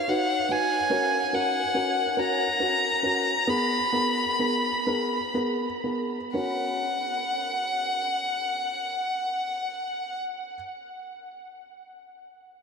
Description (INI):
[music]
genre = pop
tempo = 39-48 BPM (dotted quarters)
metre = 6/8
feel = straight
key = F# major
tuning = A4 = 439 Hz
[part]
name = warm violin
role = melody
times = 0.0-10.2 s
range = E#5 to B5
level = -26 LUFS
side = left 1 dB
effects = ping-pong delay
[part]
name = felt-muted upright piano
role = accompaniment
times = 0.1-10.5 s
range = B3 to B4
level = -28 LUFS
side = equal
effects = none
[sound]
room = wet huge ambient reverb, RT60 8.2 s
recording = dreamy mix soaked in reverb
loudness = -24 LUFS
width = side -6 dB against mid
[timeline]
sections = 0.0-6.3 A section; 6.3-9.5 B section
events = slowing down 0.9-6.3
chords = 0.0 B; 0.9 F#; 3.5 G#madd9; 6.3 F#